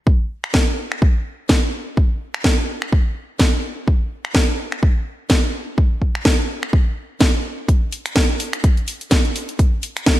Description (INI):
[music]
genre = house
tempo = 126 BPM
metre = 4/4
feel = swing 56% on 16ths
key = none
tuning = none
[part]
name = electronic kick drum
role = drums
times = 0.1-10.2 s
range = none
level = -16 LUFS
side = equal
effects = small room ambience
[part]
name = house drum kit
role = drums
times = 0.4-10.2 s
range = finger snaps, hi-hat, snare drum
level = -20 LUFS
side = equal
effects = small room ambience
[sound]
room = moderate lush hall reverb, RT60 1.6 s, digital ambience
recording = bright 1980s-style digital production, lossy compression artefacts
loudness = -16 LUFS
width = side -15 dB against mid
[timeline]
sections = 0.0-10.2 A section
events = none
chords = none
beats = | 0.07 0.55 1.02 1.50 | 1.97 2.45 2.93 3.40 | 3.88 4.36 4.83 5.31 | 5.78 6.26 6.74 7.21 | 7.69 8.16 8.64 9.12 | 9.59 10.07